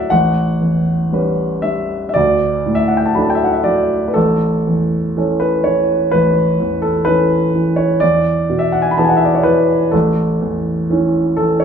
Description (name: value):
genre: classical, romantic nocturne for solo piano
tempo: 58-64 BPM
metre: 4/4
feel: rubato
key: unclear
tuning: A4 = 440 Hz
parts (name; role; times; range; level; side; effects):
- warm baby grand piano; solo; 0.0-11.6 s; A1 to B5; -13 LUFS; equal; none
room: wet stone room reverb, RT60 1.0 s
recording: minimal, uncompressed stereo recording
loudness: -13 LUFS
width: side -7 dB against mid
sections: 0.0-11.6 A section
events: none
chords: 0.1 A9; 2.2 D; 4.2 A; 8.0 E; 9.9 A